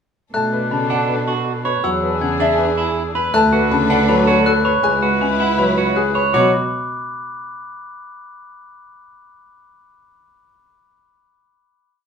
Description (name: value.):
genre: classical, minimalist pattern music.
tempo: 160 BPM.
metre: 4/4.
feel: straight.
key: B dorian.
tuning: A4 = 440 Hz.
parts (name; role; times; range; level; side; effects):
clear grand piano; melody; 0.3-6.5 s; G#4 to A5; -21 LUFS; left 7 dB; none.
mellow soprano saxophone; second line; 0.3-6.1 s; G#4 to B4; -25 LUFS; right 4 dB; none.
warm concert grand piano; accompaniment; 0.3-6.5 s; C#3 to A3; -22 LUFS; left 1 dB; none.
rich studio string section; sustained chords; 0.3-6.1 s; D4 to B4; -26 LUFS; left 4 dB; none.
glockenspiel with soft plastic mallets; arpeggios; 0.3-6.5 s; B5 to G#6; -23 LUFS; left 6 dB; none.
rich cello; bass; 0.3-6.5 s; C#2 to B2; -22 LUFS; right 3 dB; none.
electric guitar at the edge of break-up; arpeggios; 0.9-6.5 s; D4 to C#5; -21 LUFS; right 8 dB; none.
room: moderate large studio reverb, RT60 0.8 s.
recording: none.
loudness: -15 LUFS.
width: side -6 dB against mid.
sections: 0.3-6.3 A section; 6.3-7.8 final chord.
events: none.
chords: 0.3 Bm7; 1.8 E13; 3.3 Bm7/D; 4.8 C#m7; 6.3 Bm.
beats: | 0.34 0.71 1.09 1.46 | 1.84 2.21 2.59 2.96 | 3.34 3.71 4.09 4.46 | 4.84 5.21 5.59 5.96 | 6.34.